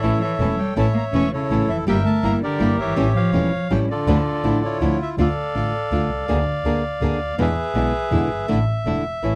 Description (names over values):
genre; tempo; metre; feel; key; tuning
tango; 163 BPM; 3/4; rubato; D harmonic minor; A4 = 440 Hz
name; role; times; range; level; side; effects
bandoneon; melody; 0.0-9.4 s; E4 to C#6; -27 LUFS; equal; none
warm cello; second line; 0.0-4.8 s; C#3 to C#4; -27 LUFS; equal; none
nylon-string guitar; accompaniment; 0.0-9.4 s; B2 to Ab4; -24 LUFS; equal; none
bandoneon; stabs; 0.0-9.4 s; F3 to A4; -32 LUFS; equal; none
rich double bass; bass; 0.0-9.4 s; E1 to E2; -26 LUFS; equal; none
room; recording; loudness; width
little or no reverb; dry, close 1970s-style studio recording; -21 LUFS; mono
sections
0.0-5.2 A section; 5.2-9.4 B section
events
none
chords
0.0 A; 1.9 Edim/G; 3.0 A7; 4.1 Dmadd9; 5.2 Dm; 6.3 Bb7/D; 7.4 E7; 8.5 Asus4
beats
0.03 0.40 | 0.77 1.14 1.50 | 1.87 2.24 2.60 | 2.97 3.33 3.70 | 4.07 4.44 4.81 | 5.18 5.55 5.92 | 6.28 6.65 7.01 | 7.38 7.75 8.12 | 8.49 8.86 9.23